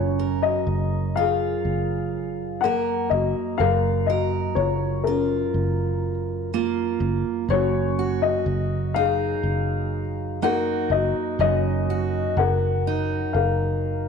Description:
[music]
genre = acoustic folk-pop ballad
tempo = 62 BPM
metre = 4/4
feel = straight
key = F# major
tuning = A4 = 440 Hz
[part]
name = dark upright piano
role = melody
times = 0.0-14.1 s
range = C#4 to F#5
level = -24 LUFS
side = left 9 dB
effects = none
[part]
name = fingerpicked steel-string acoustic guitar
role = accompaniment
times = 0.0-14.1 s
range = F#2 to A#4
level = -26 LUFS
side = right 8 dB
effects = none
[part]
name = fingered electric bass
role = bass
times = 0.0-14.1 s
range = F#1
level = -26 LUFS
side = equal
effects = none
[sound]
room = wet echo chamber reverb, RT60 1.3 s, small room ambience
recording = 1960s-style stereo with parts hard left and right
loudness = -21 LUFS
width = side -6 dB against mid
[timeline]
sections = 0.0-14.1 A section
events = none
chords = 0.0 F#maj7; 7.5 D#m/F#

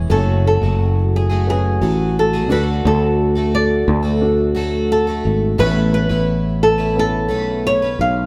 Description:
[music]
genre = pop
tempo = 88 BPM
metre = 4/4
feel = straight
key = F# minor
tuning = A4 = 438 Hz
[part]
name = flamenco guitar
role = melody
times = 0.0-8.3 s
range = G#4 to E#5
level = -22 LUFS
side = equal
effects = none
[part]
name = picked plugged-in twelve-string acoustic guitar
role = accompaniment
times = 0.0-8.3 s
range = F#2 to B4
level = -25 LUFS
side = equal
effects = none
[part]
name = sustaining fretless electric bass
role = bass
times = 0.0-8.3 s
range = F#1 to D2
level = -20 LUFS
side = equal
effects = none
[part]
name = dark upright piano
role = accompaniment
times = 0.1-8.3 s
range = A3 to G#5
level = -31 LUFS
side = equal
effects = none
[part]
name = dark French horn section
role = sustained chords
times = 0.1-8.3 s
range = C#3 to F#4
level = -29 LUFS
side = equal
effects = none
[sound]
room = moderate stone room reverb, RT60 1.0 s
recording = band playing live in one room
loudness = -17 LUFS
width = mono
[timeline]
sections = 0.1-8.3 A section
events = none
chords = 0.1 F#madd9; 2.5 D; 5.6 Aadd9

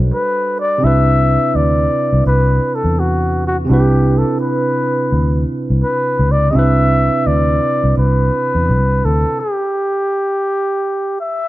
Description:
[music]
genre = R&B, neo-soul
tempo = 84 BPM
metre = 4/4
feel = swing 61% on 16ths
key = unclear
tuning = A4 = 443 Hz
[part]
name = barky tine electric piano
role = accompaniment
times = 0.0-9.4 s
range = C3 to D5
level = -18 LUFS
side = right 2 dB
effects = overdrive
[part]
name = vintage muted fingered electric bass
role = bass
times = 0.0-9.2 s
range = B1 to E2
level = -14 LUFS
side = equal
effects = none
[part]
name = trumpet with bucket mute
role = melody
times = 0.1-11.5 s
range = F#4 to E5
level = -17 LUFS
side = left 1 dB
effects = slapback echo
[sound]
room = light reverb, small room ambience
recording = none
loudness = -13 LUFS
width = side -16 dB against mid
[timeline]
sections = 0.0-11.5 A section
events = stop 9.4-11.5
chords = 0.0 Gmaj9; 0.8 Cmaj9

